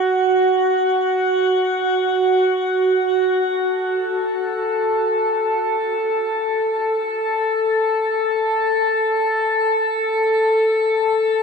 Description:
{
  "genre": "ambient",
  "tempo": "free time",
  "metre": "none",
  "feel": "none",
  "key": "unclear",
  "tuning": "A4 = 442 Hz",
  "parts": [
    { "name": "drifting glass-harmonics texture", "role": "solo", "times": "0.0-11.4 s", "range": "F#4 to A5", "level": "-17 LUFS", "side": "equal", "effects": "chorus, built-in reverb, ping-pong delay" }
  ],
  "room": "wet huge ambient reverb, RT60 8.6 s",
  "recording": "dark, warm production, nothing above 10.5 kHz",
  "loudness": "-17 LUFS",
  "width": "side -5 dB against mid",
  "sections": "0.0-3.4 A section; 3.4-11.4 B section",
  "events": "none",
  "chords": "none"
}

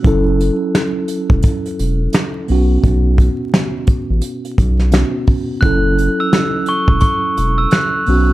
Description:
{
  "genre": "hip hop, boom-bap hip-hop",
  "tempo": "86 BPM",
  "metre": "4/4",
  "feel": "swing 59% on 16ths",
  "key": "F# minor",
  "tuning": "A4 = 440 Hz",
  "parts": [
    { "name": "mellow tine electric piano", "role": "accompaniment", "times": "0.0-8.3 s", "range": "B2 to A4", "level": "-19 LUFS", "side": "right 1 dB", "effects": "medium stereo tremolo, high-pass filter, low-pass filter" },
    { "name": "saturated sub bass", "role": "bass", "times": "0.0-8.3 s", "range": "E1 to B1", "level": "-15 LUFS", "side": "equal", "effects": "none" },
    { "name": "soft brush drum kit", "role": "drums", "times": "0.0-8.3 s", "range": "hi-hat, kick drum, snare drum", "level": "-15 LUFS", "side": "equal", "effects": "none" },
    { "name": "glockenspiel with soft plastic mallets", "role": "melody", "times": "5.6-8.0 s", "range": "C#6 to F#6", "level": "-17 LUFS", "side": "right 1 dB", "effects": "high-pass filter, low-pass filter" }
  ],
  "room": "little or no reverb",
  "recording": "vinyl crackle",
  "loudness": "-13 LUFS",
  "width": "side -16 dB against mid",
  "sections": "0.0-8.3 A section",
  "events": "break 0.0-2.8",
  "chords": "0.0 F#m7; 2.5 Bsus2; 5.6 F#m7"
}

